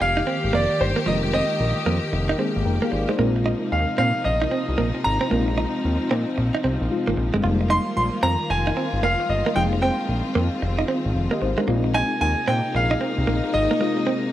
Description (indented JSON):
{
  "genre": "R&B",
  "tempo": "113 BPM",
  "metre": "4/4",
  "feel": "swing 63% on 16ths",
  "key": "F minor",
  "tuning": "A4 = 440 Hz",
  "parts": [
    { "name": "clear concert grand piano", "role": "melody", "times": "0.0-14.3 s", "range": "C5 to C6", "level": "-24 LUFS", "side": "equal", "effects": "none" },
    { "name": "mellow FM electric piano", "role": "accompaniment", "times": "0.0-14.3 s", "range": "G3 to G5", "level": "-28 LUFS", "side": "left 2 dB", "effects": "chorus, tremolo" },
    { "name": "warm studio string section", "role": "sustained chords", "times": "0.0-14.3 s", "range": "C3 to G4", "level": "-27 LUFS", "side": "left 2 dB", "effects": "none" },
    { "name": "direct-recorded clean electric guitar", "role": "riff", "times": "0.0-14.2 s", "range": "F3 to F4", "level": "-26 LUFS", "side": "right 4 dB", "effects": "lush chorus" },
    { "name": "fat analog bass", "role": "bass", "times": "0.0-13.7 s", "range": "F1 to Bb2", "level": "-24 LUFS", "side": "equal", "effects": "none" }
  ],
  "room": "light reverb, small room reverb",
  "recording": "none",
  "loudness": "-20 LUFS",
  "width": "side -13 dB against mid",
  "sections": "0.0-14.3 A section",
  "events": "none",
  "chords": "0.0 Fm11; 3.2 Bb9sus4; 7.4 Fm11; 11.7 Bb9sus4",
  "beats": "0.00 0.53 | 1.06 1.59 2.12 2.66 | 3.19 3.72 4.25 4.78 | 5.31 5.84 6.37 6.90 | 7.43 7.97 8.50 9.03 | 9.56 10.09 10.62 11.15 | 11.68 12.21 12.74 13.28 | 13.81"
}